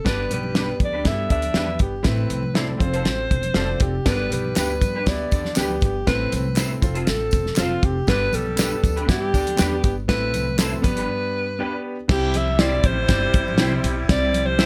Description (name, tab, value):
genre	uptempo 1960s-style soul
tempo	120 BPM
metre	4/4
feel	straight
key	C major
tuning	A4 = 440 Hz
part	warm alto saxophone	melody	0.0-14.7 s	F4 to E5	-28 LUFS	equal	none
part	clear concert grand piano	accompaniment	0.0-14.7 s	G2 to G5	-31 LUFS	equal	none
part	congas	percussion	0.0-14.7 s	none	-37 LUFS	equal	none
part	clear saxophone section	second line	0.1-14.7 s	C3 to G4	-34 LUFS	equal	none
part	upright bass	bass	0.1-14.7 s	E1 to G2	-28 LUFS	equal	none
part	cloth-damped thuddy drum kit	drums	0.1-14.7 s	crash cymbal, hi-hat, kick drum, snare drum	-24 LUFS	equal	none
part	electric guitar through a small old amp	stabs	0.6-14.7 s	D4 to C5	-31 LUFS	equal	ensemble chorus
part	tambourine and handclaps	percussion	4.1-11.0 s	none	-36 LUFS	equal	none
room	little or no reverb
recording	none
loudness	-21 LUFS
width	mono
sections	0.0-12.1 A section; 12.1-14.7 B section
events	break 11.1-12.1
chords	0.1 G; 2.1 Am; 2.8 F; 4.1 G; 6.1 Am; 6.8 F; 8.1 G; 10.1 Am; 10.8 G; 12.1 C